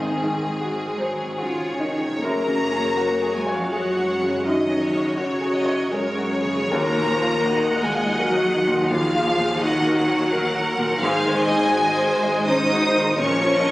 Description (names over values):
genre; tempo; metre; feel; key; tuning
cinematic, emotional film score for orchestra; 69-86 BPM; 3/4; rubato; unclear; A4 = 441 Hz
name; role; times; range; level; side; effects
clear studio violin section; melody; 0.0-13.7 s; Ab4 to Gb5; -28 LUFS; left 1 dB; none
rich studio violin section; second line; 0.0-13.7 s; C4 to Eb6; -27 LUFS; equal; none
bright baby grand piano; accompaniment; 0.0-13.7 s; Eb2 to Gb5; -26 LUFS; equal; none
warm symphonic viola section; accompaniment; 0.0-13.7 s; Eb3 to Gb5; -26 LUFS; equal; none
concert harp; arpeggios; 0.0-13.7 s; Gb2 to Bb4; -33 LUFS; left 1 dB; none
rich symphonic cello section; bass; 0.0-13.7 s; Ab2 to Eb4; -29 LUFS; right 1 dB; none
rich symphonic double bass section; bass; 0.0-13.7 s; Ab1 to Gb2; -32 LUFS; right 1 dB; none
mellow French horn section; sustained chords; 1.4-13.7 s; Db4 to Eb5; -25 LUFS; left 1 dB; none
timpani; percussion; 13.2-13.7 s; Bb2; -35 LUFS; equal; none
room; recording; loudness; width
wet scoring stage reverb, RT60 2.0 s; recorded on a phone in the room, studio reverb; -19 LUFS; side -17 dB against mid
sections
0.0-2.2 A section; 2.2-13.7 A section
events
none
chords
0.0 Ab7; 2.2 Gbsus2; 6.7 Ebmadd9; 11.0 Ab7; 13.2 Bbm